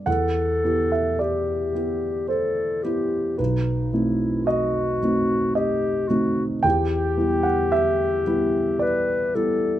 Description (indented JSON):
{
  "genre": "classical, romantic duo for clarinet and grand piano",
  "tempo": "55 BPM",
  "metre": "3/4",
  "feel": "rubato",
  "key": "E minor",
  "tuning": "A4 = 441 Hz",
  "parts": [
    { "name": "dark baby grand piano", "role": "accompaniment", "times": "0.0-9.8 s", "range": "B1 to G5", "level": "-22 LUFS", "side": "right 2 dB", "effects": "none" },
    { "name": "mellow clarinet", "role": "melody", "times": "0.1-9.8 s", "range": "D#4 to B4", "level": "-24 LUFS", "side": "left 3 dB", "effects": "none" }
  ],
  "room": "light reverb",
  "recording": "close, detailed microphones",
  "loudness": "-20 LUFS",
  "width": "side -12 dB against mid",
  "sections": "0.1-9.8 A section",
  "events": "none",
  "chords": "0.1 Em; 3.4 B7b9; 6.6 Em",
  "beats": "| 0.07 1.20 2.30 | 3.39 4.47 5.57 | 6.64 7.73 8.82"
}